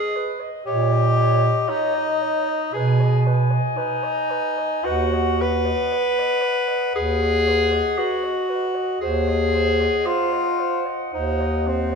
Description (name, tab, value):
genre	classical, lyrical piece for single-reed quartet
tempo	58 BPM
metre	4/4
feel	rubato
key	unclear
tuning	A4 = 441 Hz
part	warm clarinet	melody	0.0-12.0 s	Eb5 to Ab5	-29 LUFS	left 6 dB	none
part	mellow alto saxophone	second line	0.0-12.0 s	B4 to Eb5	-27 LUFS	right 6 dB	none
part	clear tenor saxophone	accompaniment	0.0-12.0 s	B#3 to B4	-22 LUFS	left 2 dB	none
part	mellow bass clarinet	bass	0.7-12.0 s	D#2 to Cb3	-22 LUFS	right 1 dB	none
room	wet scoring stage reverb, RT60 1.9 s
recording	none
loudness	-19 LUFS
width	side -5 dB against mid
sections	0.0-12.0 A section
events	none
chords	0.0 Abm; 0.7 Eb7/Bb; 2.7 Abm/Cb; 4.8 B/D#; 9.0 G#7/D#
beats	| 0.67 1.69 2.73 3.77 | 4.84 5.92 6.95 7.99 | 9.02 10.06 11.13